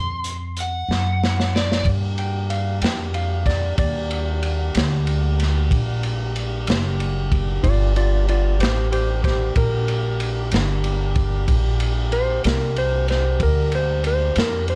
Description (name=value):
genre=slow blues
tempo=62 BPM (dotted quarters)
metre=12/8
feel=straight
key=G minor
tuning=A4 = 437 Hz
part: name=lead guitar through a small cranked amp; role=melody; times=0.0-1.9 s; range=D5 to C6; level=-28 LUFS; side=equal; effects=overdrive
part: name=upright bass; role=bass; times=0.0-14.8 s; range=F#1 to G2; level=-24 LUFS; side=equal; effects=none
part: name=crunchy breakbeat drum kit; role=drums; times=0.2-14.8 s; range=hi-hat, kick drum, ride cymbal, snare drum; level=-27 LUFS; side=equal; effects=none
part: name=mellow horn section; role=sustained chords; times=1.9-14.8 s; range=G3 to G4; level=-34 LUFS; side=equal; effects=none
part: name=clean lap steel guitar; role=second line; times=2.2-14.8 s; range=F4 to G5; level=-27 LUFS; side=equal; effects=none
room=little or no reverb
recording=dark, warm production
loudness=-21 LUFS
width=mono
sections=0.0-1.9 A section; 1.9-14.8 B section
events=drum fill 0.9-1.9; electric slide guitar solo 1.9-14.8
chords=0.0 D7#9 (rootless); 1.9 Gm